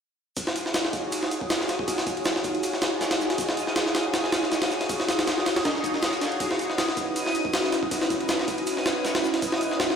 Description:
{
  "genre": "drum and bass, jungle",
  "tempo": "159 BPM",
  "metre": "4/4",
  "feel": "swing 54% on 16ths",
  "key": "Eb minor",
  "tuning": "A4 = 441 Hz",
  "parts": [
    { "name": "crunchy breakbeat drum kit", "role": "drums", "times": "0.4-10.0 s", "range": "hi-hat, shaker, snare drum", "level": "-35 LUFS", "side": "right 1 dB", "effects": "high-pass filter on hats, studio reverb, high-pass filter on snare, high-pass filter on perc, high-pass filter on room" },
    { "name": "jungle sampler-style drum kit", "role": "drums", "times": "0.4-10.0 s", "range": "kick drum, ride cymbal, snare drum", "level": "-26 LUFS", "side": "equal", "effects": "overdrive, high-pass filter on cymbals, studio reverb, high-pass filter on kick, high-pass filter on snare" },
    { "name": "backwards swelling texture", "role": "texture", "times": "1.1-10.0 s", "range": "Eb6", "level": "-36 LUFS", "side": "left 1 dB", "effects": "built-in reverb" }
  ],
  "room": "moderate echo chamber reverb, RT60 1.4 s, small room ambience",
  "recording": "played on a big sound system in a bare room, stone room reverb",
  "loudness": "-23 LUFS",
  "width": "side -7 dB against mid",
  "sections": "0.4-10.0 A section",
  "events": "none",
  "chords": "none"
}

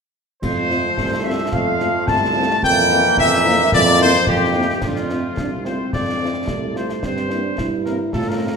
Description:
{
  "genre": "military-style march for wind band",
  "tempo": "109 BPM",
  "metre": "2/4",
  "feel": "straight",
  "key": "F major",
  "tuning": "A4 = 438 Hz",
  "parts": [
    { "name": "bright trumpet section", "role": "melody", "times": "0.4-8.6 s", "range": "F4 to A5", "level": "-20 LUFS", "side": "equal", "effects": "none" },
    { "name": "small flute group", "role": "second line", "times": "0.4-4.8 s", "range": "G4 to A5", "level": "-21 LUFS", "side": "left 5 dB", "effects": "none" },
    { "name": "warm trombone section", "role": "sustained chords", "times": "0.4-4.5 s", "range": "E3 to Bb3", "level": "-24 LUFS", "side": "right 2 dB", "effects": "none" },
    { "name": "warm tuba", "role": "bass", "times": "0.4-8.5 s", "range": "C2 to A2", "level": "-23 LUFS", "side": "right 3 dB", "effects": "none" },
    { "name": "clash cymbals, concert bass drum and concert snare drum", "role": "drums", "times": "0.4-8.6 s", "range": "none", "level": "-26 LUFS", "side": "left 1 dB", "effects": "none" },
    { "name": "dark French horn section", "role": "accompaniment", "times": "0.7-8.5 s", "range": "A3 to F4", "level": "-27 LUFS", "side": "left 3 dB", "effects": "none" },
    { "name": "warm euphonium", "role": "second line", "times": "4.8-8.6 s", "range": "A3 to F4", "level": "-26 LUFS", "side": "right 3 dB", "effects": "none" }
  ],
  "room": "wet scoring stage reverb, RT60 1.6 s",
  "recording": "minimal, uncompressed stereo recording",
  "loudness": "-16 LUFS",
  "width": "side -5 dB against mid",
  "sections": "0.4-4.8 A section; 4.8-8.6 B section",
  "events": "none",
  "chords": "0.4 F; 2.6 C7/F; 4.8 F; 7.0 C7/G"
}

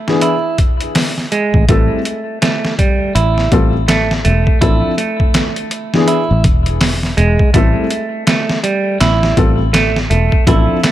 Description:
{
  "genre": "trip hop",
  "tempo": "82 BPM",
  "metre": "4/4",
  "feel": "swing 60% on 16ths",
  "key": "A minor",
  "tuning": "A4 = 440 Hz",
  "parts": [
    { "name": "semi-hollow electric guitar", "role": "arpeggios", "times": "0.0-10.9 s", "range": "G3 to E4", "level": "-17 LUFS", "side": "right 4 dB", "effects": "ping-pong delay" },
    { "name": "felt-muted upright piano", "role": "accompaniment", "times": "0.1-10.8 s", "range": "E3 to A4", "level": "-19 LUFS", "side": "left 3 dB", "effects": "tremolo, tape echo" },
    { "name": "trip hop sampler-style drum kit", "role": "drums", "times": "0.1-10.9 s", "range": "hi-hat, kick drum, snare drum", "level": "-14 LUFS", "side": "equal", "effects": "overdrive" },
    { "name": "fingered electric bass", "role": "bass", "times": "1.5-10.7 s", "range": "E1 to A1", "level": "-14 LUFS", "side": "equal", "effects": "none" }
  ],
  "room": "little or no reverb",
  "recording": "none",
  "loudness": "-11 LUFS",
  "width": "side -13 dB against mid",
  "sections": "0.0-10.9 A section",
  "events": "filter sweep on clean electric guitar 0.0-10.9",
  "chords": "0.2 E; 1.7 Am7; 3.1 G9sus4/A; 4.6 Dm7/A; 6.1 E; 7.5 Am7; 9.0 G9sus4/A"
}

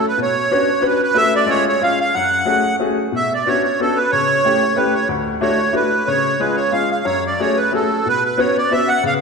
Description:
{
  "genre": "musette waltz",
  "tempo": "184 BPM",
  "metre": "3/4",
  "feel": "swing 53% on 8ths, rubato",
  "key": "unclear",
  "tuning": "A4 = 440 Hz",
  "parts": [
    { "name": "accordion", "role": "melody", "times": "0.0-9.1 s", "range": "A4 to F#5", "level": "-16 LUFS", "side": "right 2 dB", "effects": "light tremolo tuning" },
    { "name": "clear upright piano", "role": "accompaniment", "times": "0.0-9.2 s", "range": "D2 to B4", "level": "-19 LUFS", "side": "left 3 dB", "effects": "none" }
  ],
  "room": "wet scoring stage reverb, RT60 1.7 s",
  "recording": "recorded in a church or concert hall",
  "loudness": "-15 LUFS",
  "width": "side -4 dB against mid",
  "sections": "0.0-9.2 A section",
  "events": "none",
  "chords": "0.2 Bmadd9; 1.2 F#m; 1.5 C#; 2.1 F#madd9; 3.1 Bmadd9; 4.1 A7/C#; 5.1 Dadd9; 6.1 C#; 7.1 F#madd9; 8.1 Bsus2"
}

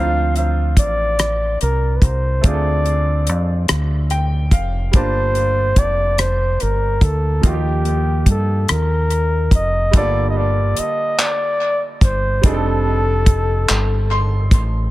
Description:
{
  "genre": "slow six-eight R&B",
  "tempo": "48 BPM (dotted quarters)",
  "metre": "6/8",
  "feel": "straight",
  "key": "G minor",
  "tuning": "A4 = 440 Hz",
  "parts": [
    { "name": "breathy flugelhorn", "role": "melody", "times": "0.0-14.5 s", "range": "G4 to F5", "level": "-21 LUFS", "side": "equal", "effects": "tape echo" },
    { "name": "clear baby grand piano", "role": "accompaniment", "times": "0.0-14.9 s", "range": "D3 to C6", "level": "-26 LUFS", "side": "right 2 dB", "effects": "tape echo" },
    { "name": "deep dub fingered electric bass", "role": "bass", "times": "0.0-14.9 s", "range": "F1 to G2", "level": "-18 LUFS", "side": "equal", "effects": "none" },
    { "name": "damped 70s drum kit", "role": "drums", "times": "0.4-14.7 s", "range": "handclaps, hi-hat, kick drum, rim click", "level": "-14 LUFS", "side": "equal", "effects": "none" }
  ],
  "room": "light reverb, studio ambience",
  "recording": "echo-heavy mix",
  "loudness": "-15 LUFS",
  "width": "side -17 dB against mid",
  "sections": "0.0-9.9 A section; 9.9-14.9 B section",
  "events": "grand piano fill 3.7-4.9, 13.7-14.9",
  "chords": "0.0 Dm7; 4.9 Gm9; 7.4 Ebadd9; 9.9 Gm9; 12.4 F13"
}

